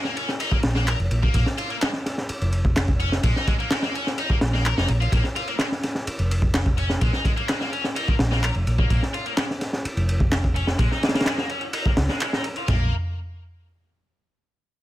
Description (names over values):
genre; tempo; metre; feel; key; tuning
breakbeat, breaks; 127 BPM; 4/4; straight; Bb minor; A4 = 440 Hz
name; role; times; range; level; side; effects
crunchy breakbeat drum kit; drums; 0.0-12.8 s; kick drum, ride cymbal, snare drum, toms; -23 LUFS; equal; none
heavy high-gain guitar; riff; 0.1-12.9 s; Ab3 to Bb4; -28 LUFS; left 2 dB; distortion, low-pass filter, digital delay
hollow-body short-scale fingered electric bass; bass; 0.6-12.9 s; F1 to Db2; -23 LUFS; equal; none
electronic handclaps; drums; 0.9-12.3 s; none; -29 LUFS; equal; overdrive
room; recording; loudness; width
little or no reverb; none; -20 LUFS; side -15 dB against mid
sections
0.0-12.7 A section; 12.7-14.6 B section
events
none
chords
0.0 Bb5; 12.7 N.C.